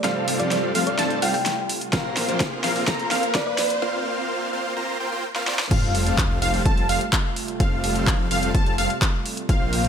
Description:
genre	EDM, festival progressive house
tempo	127 BPM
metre	4/4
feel	straight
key	F major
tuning	A4 = 440 Hz
part	picked steel-string acoustic guitar	accompaniment	0.0-3.8 s	Bb2 to C5	-31 LUFS	left 3 dB	sidechain pumping, ping-pong delay
part	lush unison pad	sustained chords	0.0-9.9 s	C3 to F4	-34 LUFS	right 2 dB	chorus, sidechain pumping
part	plucky unison lead	arpeggios	0.0-9.9 s	F5 to Bb5	-28 LUFS	equal	wide subtle chorus, sidechain pumping, ping-pong delay
part	dense compressed supersaw	riff	0.0-9.9 s	G3 to Bb5	-27 LUFS	right 1 dB	sidechain pumping, low-pass filter, ping-pong delay
part	wide detuned saw bass	bass	0.0-9.9 s	F1 to Bb1	-28 LUFS	equal	chorus, sidechain pumping, high-pass filter
part	big-room dance drum kit	drums	0.0-9.9 s	crash cymbal, handclaps, hi-hat, snare drum	-26 LUFS	equal	overdrive, high-pass filter on snare, high-pass filter on hats, high-pass filter on cymbals
part	riser and sub drop	sound effects	0.7-7.6 s	none	-32 LUFS	equal	none
part	thumb-piano-like synth pluck	melody	0.4-3.8 s	D5 to G5	-28 LUFS	equal	chorus, ping-pong delay
part	electronic kick drum	drums	1.9-9.6 s	none	-22 LUFS	equal	none
room	light reverb, digital ambience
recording	high-pass filter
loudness	-20 LUFS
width	side -8 dB against mid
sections	0.0-5.7 A section; 5.7-9.9 B section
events	build-up 0.0-5.7; drum fill 0.0-3.8, 5.4-5.7; riser 0.7-3.8; break 3.8-5.7; drop 5.7-9.9; impact 5.7-7.6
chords	0.0 Fadd9; 1.9 Bbsus2; 5.7 Fadd9

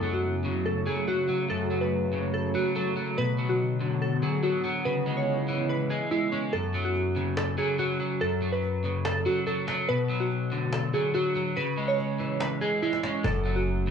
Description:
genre	hip hop, trap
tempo	143 BPM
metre	4/4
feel	half-time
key	F# minor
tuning	A4 = 440 Hz
part	glassy digital keys	melody	0.0-13.9 s	C#4 to C#5	-29 LUFS	right 1 dB	chorus, tape echo
part	electric guitar at the edge of break-up	accompaniment	0.0-13.9 s	F#2 to G#3	-28 LUFS	left 1 dB	wide subtle chorus
part	warbly tape-like pad	sustained chords	0.0-6.5, 13.5-13.9 s	C#3 to F#4	-32 LUFS	equal	chorus, built-in reverb
part	cajon	drums	6.5-13.9 s	none	-37 LUFS	equal	none
part	distorted 808-style bass	bass	13.2-13.9 s	F#1	-28 LUFS	left 1 dB	distortion
room	digital ambience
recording	dry, gritty hardware recording, cassette tape, small room reverb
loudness	-25 LUFS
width	side -7 dB against mid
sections	0.0-6.5 A section; 6.5-13.9 B section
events	kick muted 6.5-13.2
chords	0.0 F#m; 3.2 Bm; 4.9 C#m7; 6.5 F#m; 9.9 Bm; 11.6 C#m; 13.2 F#m

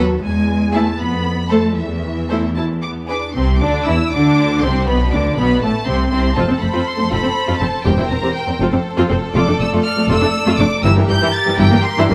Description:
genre	quick classical-period movement for string orchestra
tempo	80 BPM (dotted quarters)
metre	6/8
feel	straight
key	unclear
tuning	A4 = 440 Hz
part	clear studio violin section	melody	0.0-12.1 s	E5 to A6	-25 LUFS	equal	none
part	rich studio violin section	second line	0.0-12.1 s	A3 to E5	-26 LUFS	equal	none
part	warm studio viola section	accompaniment	0.0-12.1 s	E3 to A4	-21 LUFS	equal	none
part	rich studio double bass section	bass	0.0-12.1 s	E1 to F2	-22 LUFS	equal	none
part	warm studio cello section	bass	0.0-12.1 s	E2 to B3	-23 LUFS	equal	none
room	moderate recital hall reverb, RT60 1.7 s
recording	vinyl crackle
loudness	-16 LUFS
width	mono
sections	0.0-3.3 A section; 3.3-12.1 B section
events	none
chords	0.2 E; 1.0 F; 1.8 A5/E; 2.6 E5; 3.3 Cadd9; 4.9 Bm; 5.6 Am; 6.4 F; 7.9 C7/E; 8.6 F; 9.3 Dm/F; 10.8 Edim/G

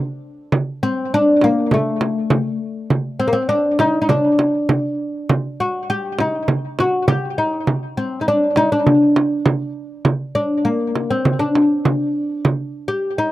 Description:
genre	Arabic maqam ensemble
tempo	101 BPM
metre	4/4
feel	straight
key	D maqam hijaz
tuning	A4 = 440 Hz
part	oud	melody	0.0-13.3 s	A3 to G4	-17 LUFS	left 1 dB	tape echo
part	frame drum	percussion	0.5-12.6 s	none	-19 LUFS	right 2 dB	none
room	light reverb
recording	dry, close 1970s-style studio recording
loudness	-16 LUFS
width	side -16 dB against mid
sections	0.5-10.1 A section; 10.1-13.3 B section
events	none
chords	none

